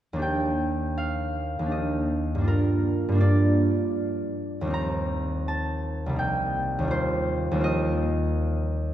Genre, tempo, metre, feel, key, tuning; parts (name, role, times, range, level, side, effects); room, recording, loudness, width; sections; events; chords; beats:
classical, solo harp piece; 81 BPM; 3/4; uneven beats, rubato; Eb lydian; A4 = 440 Hz
concert harp; solo; 0.1-8.9 s; C2 to Bb5; -23 LUFS; equal
wet church reverb, RT60 3.0 s; heard from further back in the room; -23 LUFS; side -12 dB against mid
0.2-8.9 A section
0.2 Ebmaj7; 2.5 Gm7; 4.7 Eb6; 6.9 Eb69
| 0.22 0.98 1.72 | 2.48 3.22 3.96 | 4.74 5.49 6.20 | 6.92 7.64 8.37